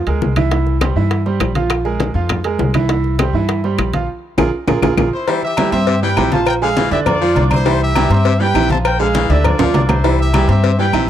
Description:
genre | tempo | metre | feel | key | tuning
latin, salsa | 202 BPM | 4/4 | straight | C major | A4 = 440 Hz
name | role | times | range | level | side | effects
bright concert grand piano | accompaniment | 0.0-11.1 s | D3 to D6 | -19 LUFS | right 7 dB | none
upright bass | bass | 0.0-11.1 s | Bb1 to G2 | -17 LUFS | left 1 dB | none
bongos and cowbell | percussion | 0.1-11.1 s | none | -24 LUFS | left 9 dB | none
congas | percussion | 0.1-11.1 s | none | -22 LUFS | left 2 dB | none
timbales and agogo bells | percussion | 0.1-11.1 s | none | -22 LUFS | right 4 dB | none
claves | percussion | 0.4-11.1 s | none | -27 LUFS | left 16 dB | none
bright trumpet section | melody | 5.1-11.1 s | E4 to A5 | -20 LUFS | left 2 dB | none
edgy baritone saxophone | second line | 5.3-11.1 s | C3 to G3 | -23 LUFS | left 11 dB | none
room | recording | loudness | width
small room ambience | dry, close 1970s-style studio recording | -13 LUFS | side -11 dB against mid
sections
0.0-5.3 A section; 5.3-11.1 B section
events
band accent 4.1-5.3; drum fill 4.8-5.3, 9.6-10.0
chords
0.0 Bb7; 0.5 C; 1.7 Bb5; 2.9 C; 4.1 Bb5; 5.3 C; 6.5 Bb7; 7.7 C; 8.8 Bb7; 10.0 C

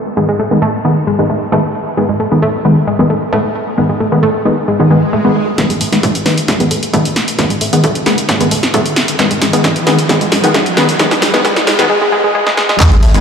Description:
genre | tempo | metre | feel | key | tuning
driving peak-time techno | 133 BPM | 4/4 | straight | G# phrygian | A4 = 440 Hz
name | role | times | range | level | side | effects
analog pluck | riff | 0.2-13.1 s | G#3 to A3 | -16 LUFS | equal | chorus, sidechain pumping, digital delay
supersaw stab | stabs | 0.2-13.2 s | D#3 to B3 | -14 LUFS | left 1 dB | sidechain pumping, low-pass filter, dub echo
swell, riser and sub drop | sound effects | 4.9-13.2 s | none | -19 LUFS | right 1 dB | none
electronic kick drum | drums | 5.6-12.9 s | none | -16 LUFS | equal | overdrive, high-pass filter on kick
techno drum kit | drums | 5.6-13.2 s | crash cymbal, handclaps, hi-hat, ride cymbal, snare drum | -15 LUFS | equal | overdrive, sidechain pumping on hats, sidechain pumping on cymbals
saturated sub bass | bass | 12.9-13.2 s | G#1 | -11 LUFS | equal | overdrive, sidechain pumping, low-pass filter
room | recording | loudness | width
moderate huge ambient reverb, RT60 7.4 s | played on a big sound system in a bare room, large studio reverb, high-pass filter, low-pass filter | -10 LUFS | side -7 dB against mid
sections
0.0-5.6 A section; 5.6-12.8 B section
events
filter sweep 0.0-5.6; swell 4.9-5.6; build-up 5.6-12.8; drum fill 5.6-11.9, 12.5-12.8; riser 5.6-11.9; filter sweep on synth arpeggio sound 5.6-12.8; filter sweep on supersaw synth 5.6-12.8; impact 12.8-13.2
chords
0.0 G#m

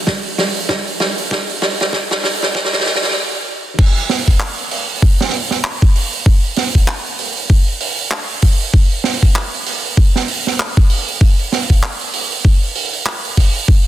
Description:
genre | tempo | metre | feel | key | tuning
glitch hop | 97 BPM | 4/4 | swing 58% on 16ths | none | none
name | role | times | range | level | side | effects
electronic kick drum | drums | 0.1-13.8 s | none | -11 LUFS | equal | none
vintage drum kit | drums | 0.1-13.8 s | crash cymbal, handclaps, hi-hat, snare drum | -17 LUFS | right 3 dB | soft clipping on snare
room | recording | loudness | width
light reverb | dense, heavily limited modern master, high-pass filter | -13 LUFS | side -14 dB against mid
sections
0.0-3.8 A section; 3.8-13.9 B section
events
build-up 0.0-3.8; drum fill 0.0-3.2; stop 3.2-3.8; drop 3.8-13.9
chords
none

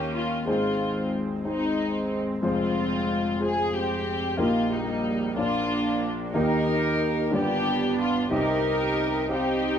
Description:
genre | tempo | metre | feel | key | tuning
gospel | 61 BPM (dotted quarters) | 6/8 | straight | Eb major | A4 = 440 Hz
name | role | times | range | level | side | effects
warm studio string section | melody | 0.0-9.8 s | G3 to Bb4 | -25 LUFS | equal | none
clear grand piano | accompaniment | 0.0-9.8 s | F1 to F5 | -27 LUFS | left 1 dB | none
room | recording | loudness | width
light reverb | dark, warm production | -23 LUFS | side -8 dB against mid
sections
0.0-9.8 A section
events
none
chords
0.5 Ab; 2.4 Fm; 4.4 Eb/Bb; 5.4 Bb; 6.4 Eb; 7.3 G7; 8.3 Cm

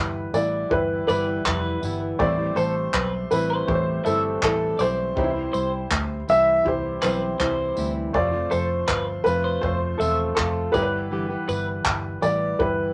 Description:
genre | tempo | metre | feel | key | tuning
acoustic pop | 81 BPM | 4/4 | straight | G mixolydian | A4 = 439 Hz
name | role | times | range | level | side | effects
warm upright piano | melody | 0.0-12.9 s | A4 to E5 | -26 LUFS | equal | none
felt-muted upright piano | accompaniment | 0.0-12.9 s | G3 to C5 | -34 LUFS | equal | none
flamenco guitar | accompaniment | 0.0-12.9 s | F2 to G4 | -33 LUFS | equal | none
vintage muted fingered electric bass | bass | 0.0-12.9 s | E1 to D2 | -32 LUFS | equal | none
loose indie drum kit | drums | 0.3-12.8 s | handclaps, kick drum, tambourine | -30 LUFS | equal | none
twelve-string electric guitar | arpeggios | 1.1-11.7 s | A4 to E5 | -31 LUFS | equal | none
room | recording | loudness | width
moderate studio reverb, RT60 0.6 s | none | -23 LUFS | mono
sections
0.0-12.9 A section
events
none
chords
0.0 G6; 2.2 Am7; 5.2 C; 8.1 F; 10.7 G6

